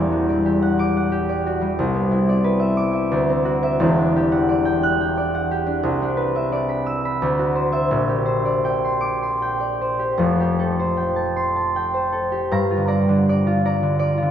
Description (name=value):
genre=classical, solo harp piece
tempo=75-91 BPM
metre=3/4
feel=rubato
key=G dorian from 3.8 s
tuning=A4 = 440 Hz
part: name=concert harp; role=solo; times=0.0-14.3 s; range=E1 to F#6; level=-18 LUFS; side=equal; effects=none
room=wet cathedral reverb, RT60 6.1 s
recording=in a vast, echoing space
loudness=-18 LUFS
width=side -9 dB against mid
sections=0.0-12.5 A section; 12.5-14.3 B section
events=none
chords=0.0 Em9; 1.8 Cmaj9; 3.1 D9; 3.8 Em9; 5.9 Cmaj9; 7.2 D9; 7.9 Bb69; 10.2 Fadd9; 12.5 Gm7